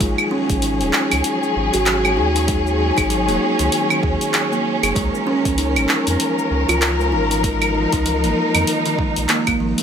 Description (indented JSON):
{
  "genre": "organic downtempo",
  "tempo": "97 BPM",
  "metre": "4/4",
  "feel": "swing 59% on 16ths",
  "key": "unclear",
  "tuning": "A4 = 439 Hz",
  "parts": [
    { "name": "warm studio string section", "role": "sustained chords", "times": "0.0-9.8 s", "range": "F3 to Bb4", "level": "-21 LUFS", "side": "left 1 dB", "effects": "sidechain pumping" },
    { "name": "buzzing kalimba", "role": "arpeggios", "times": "0.0-9.8 s", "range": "Eb3 to Ab4", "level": "-21 LUFS", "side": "equal", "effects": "ping-pong delay" },
    { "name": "warm sub bass", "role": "bass", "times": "0.0-9.7 s", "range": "Eb1 to F2", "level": "-23 LUFS", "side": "right 1 dB", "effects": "sidechain pumping" },
    { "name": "deep house drum kit", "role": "drums", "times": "0.0-9.8 s", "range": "cabasa, claves, handclaps, hi-hat", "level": "-21 LUFS", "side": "right 1 dB", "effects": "none" },
    { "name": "electronic kick drum", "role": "drums", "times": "0.0-9.6 s", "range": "none", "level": "-23 LUFS", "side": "right 1 dB", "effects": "none" }
  ],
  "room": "moderate recital hall reverb, RT60 1.6 s",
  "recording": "none",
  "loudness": "-16 LUFS",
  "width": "side -7 dB against mid",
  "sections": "0.0-9.8 A section",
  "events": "none",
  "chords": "0.0 Ab7sus4; 5.0 Db6"
}